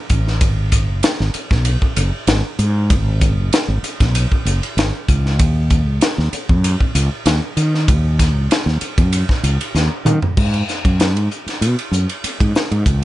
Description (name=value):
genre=electric jazz fusion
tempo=96 BPM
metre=4/4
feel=straight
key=G# minor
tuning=A4 = 439 Hz
part: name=fretless electric bass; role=bass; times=0.1-13.0 s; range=F#1 to D#3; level=-16 LUFS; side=equal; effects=none
part: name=crisp fusion drum kit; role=drums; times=0.1-13.0 s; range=crash cymbal, hi-hat, kick drum, ride cymbal, snare drum, toms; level=-17 LUFS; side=equal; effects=none
room=little or no reverb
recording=nothing above 10.4 kHz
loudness=-14 LUFS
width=side -16 dB against mid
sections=0.0-10.4 A section; 10.4-13.0 B section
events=drum fill 9.7-10.4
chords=none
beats=| 0.41 1.04 1.66 2.28 | 2.90 3.53 4.15 4.77 | 5.39 6.02 6.64 7.26 | 7.88 8.50 9.12 9.75 | 10.37 10.99 11.61 12.24 | 12.86